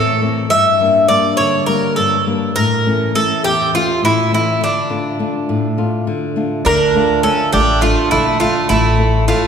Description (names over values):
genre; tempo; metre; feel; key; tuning
greek folk, Greek bouzouki band; 205 BPM (eighths); 7/8; straight; D harmonic minor; A4 = 440 Hz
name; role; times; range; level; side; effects
Greek bouzouki; melody; 0.0-9.5 s; D4 to E5; -15 LUFS; right 1 dB; none
nylon-string guitar; accompaniment; 0.0-9.5 s; E2 to C#5; -18 LUFS; left 2 dB; none
Greek bouzouki; second line; 6.6-9.5 s; A3 to D4; -18 LUFS; right 3 dB; none
upright bass; bass; 6.7-9.3 s; A1 to D2; -18 LUFS; equal; none
room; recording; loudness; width
wet church reverb, RT60 2.8 s; recorded in a church or concert hall; -13 LUFS; side -7 dB against mid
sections
0.0-6.7 A section; 6.7-9.5 A section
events
none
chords
0.0 Am; 0.5 Gm; 2.6 A; 4.6 Dm; 8.7 A